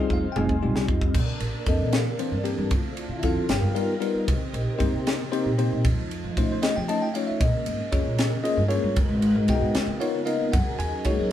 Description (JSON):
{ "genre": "electric jazz fusion", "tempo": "77 BPM (dotted quarters)", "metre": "6/8", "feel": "straight", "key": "unclear", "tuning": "A4 = 442 Hz", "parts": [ { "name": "bell-like tine electric piano", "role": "accompaniment", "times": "0.0-11.3 s", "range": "E3 to A5", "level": "-26 LUFS", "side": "left 2 dB", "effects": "medium stereo tremolo" }, { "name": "ensemble organ-string", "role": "sustained chords", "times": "0.0-11.3 s", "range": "C3 to C5", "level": "-32 LUFS", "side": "right 1 dB", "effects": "phaser, ensemble chorus" }, { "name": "upright bass", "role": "bass", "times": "0.0-11.3 s", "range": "F1 to Gb3", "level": "-26 LUFS", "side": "equal", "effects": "none" }, { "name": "crisp fusion drum kit", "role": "drums", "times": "0.1-11.2 s", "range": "crash cymbal, kick drum, ride cymbal, snare drum, toms", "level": "-27 LUFS", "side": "equal", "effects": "none" } ], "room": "moderate studio reverb, RT60 0.5 s", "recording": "band playing live in one room", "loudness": "-22 LUFS", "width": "side -11 dB against mid", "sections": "0.0-1.2 A section; 1.2-11.3 A section", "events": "drum fill 0.0-1.2", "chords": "0.0 Fm9; 1.2 Bbmaj9#11; 2.7 Dm9; 3.5 G7alt; 4.3 Cm7; 5.9 F7b13; 7.4 Bbm7; 9.0 Abm7; 9.8 Db13; 10.5 Gb69" }